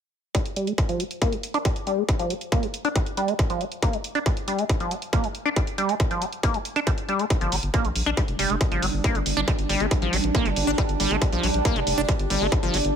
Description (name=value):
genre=psychedelic trance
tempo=138 BPM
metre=4/4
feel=straight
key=G minor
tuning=A4 = 440 Hz
part: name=liquid acid bass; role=riff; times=0.3-12.8 s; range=F3 to D4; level=-26 LUFS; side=moving between left 5 dB and right 3 dB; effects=chorus, auto-pan, sidechain pumping, digital delay
part: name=electronic hi-hat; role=drums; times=0.3-12.9 s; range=none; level=-32 LUFS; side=right 2 dB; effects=none
part: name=electronic kick drum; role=drums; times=0.3-12.6 s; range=none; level=-24 LUFS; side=equal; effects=distortion
part: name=bubbling stepped-filter texture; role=sustained chords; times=8.0-13.0 s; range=G3 to D4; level=-28 LUFS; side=right 3 dB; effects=chorus, built-in reverb, sidechain pumping
part: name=round analog bass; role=bass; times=7.4-12.9 s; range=F1 to Bb1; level=-27 LUFS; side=equal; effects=none
room=little or no reverb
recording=none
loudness=-22 LUFS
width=side -8 dB against mid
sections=0.3-13.0 A section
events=filter sweep on acid bass 0.3-13.0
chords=0.3 G5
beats=| 0.35 0.78 1.22 1.65 | 2.09 2.52 2.96 3.39 | 3.83 4.26 4.69 5.13 | 5.56 6.00 6.43 6.87 | 7.30 7.74 8.17 8.61 | 9.04 9.48 9.91 10.35 | 10.78 11.22 11.65 12.09 | 12.52 12.96